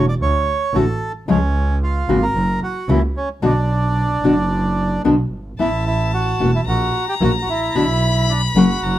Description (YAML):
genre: tango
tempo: 112 BPM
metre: 4/4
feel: rubato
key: B minor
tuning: A4 = 440 Hz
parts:
  - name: bandoneon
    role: melody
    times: 0.0-9.0 s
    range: C#4 to D5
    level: -22 LUFS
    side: right 2 dB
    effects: none
  - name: nylon-string guitar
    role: accompaniment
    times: 0.0-8.7 s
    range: B2 to F#4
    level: -17 LUFS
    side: left 2 dB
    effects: none
  - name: clear double bass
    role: bass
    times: 0.0-9.0 s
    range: E1 to D2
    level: -19 LUFS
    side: right 1 dB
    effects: none
  - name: warm violin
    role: second line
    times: 5.6-9.0 s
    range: A5 to B5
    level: -24 LUFS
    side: left 5 dB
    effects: none
room: light reverb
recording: none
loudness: -16 LUFS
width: side -13 dB against mid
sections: 0.0-9.0 A section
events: none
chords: 0.2 Dmaj7(no3); 1.3 C#; 2.4 F#7; 3.4 Bm; 5.6 A; 6.7 F#/A#; 7.7 Bm